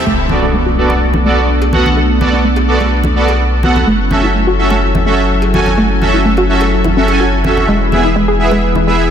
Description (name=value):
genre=progressive house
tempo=126 BPM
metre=4/4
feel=straight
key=B dorian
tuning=A4 = 441 Hz
part: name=warm analog pad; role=sustained chords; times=0.0-9.1 s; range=E3 to B4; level=-19 LUFS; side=equal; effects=chorus, vintage 12-bit sampler grit
part: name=analog pluck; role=arpeggios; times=0.0-8.9 s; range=G#3 to A4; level=-18 LUFS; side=left 1 dB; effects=chorus, ping-pong delay
part: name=soft supersaw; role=stabs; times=0.0-9.0 s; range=B3 to G#5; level=-14 LUFS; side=right 2 dB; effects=low-pass filter, ping-pong delay
part: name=round analog bass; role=bass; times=0.1-9.1 s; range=E1 to B1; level=-15 LUFS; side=equal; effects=tube saturation
part: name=impact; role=sound effects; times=0.1-2.0 s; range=none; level=-23 LUFS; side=left 1 dB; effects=none
part: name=congas, bongos and cowbell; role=percussion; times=0.3-8.8 s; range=none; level=-22 LUFS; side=left 1 dB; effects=none
room=moderate lush hall reverb, RT60 2.0 s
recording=dense, heavily limited modern master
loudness=-10 LUFS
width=side -8 dB against mid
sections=0.1-9.1 A section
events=impact 0.1-2.0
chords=0.1 Bm7; 3.9 F#m7; 7.7 E